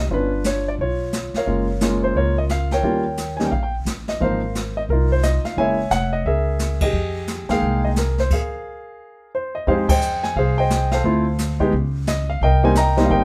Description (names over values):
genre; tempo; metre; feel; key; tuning
jazz piano trio; 176 BPM; 4/4; swing 63% on 8ths; F minor; A4 = 439 Hz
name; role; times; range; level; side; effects
warm baby grand piano; melody; 0.0-13.2 s; F3 to Bb5; -23 LUFS; equal; none
upright bass; bass; 0.0-13.2 s; F1 to F2; -24 LUFS; equal; none
jazz brush drum kit; drums; 0.1-13.2 s; brushed snare drum, crash cymbal, hi-hat, kick drum, ride cymbal, snare drum; -28 LUFS; equal; none
room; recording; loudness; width
light reverb; none; -20 LUFS; mono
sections
0.0-9.7 A section; 9.7-13.2 B section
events
band accent 6.8, 9.8; stop 8.3-9.7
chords
0.1 G7#11; 1.5 Gbmaj7; 2.8 Eb7; 4.2 Ab69; 5.6 Gb9; 6.9 Fm11; 9.7 Fm9; 11.0 Dm9; 11.7 Db; 12.4 Cm7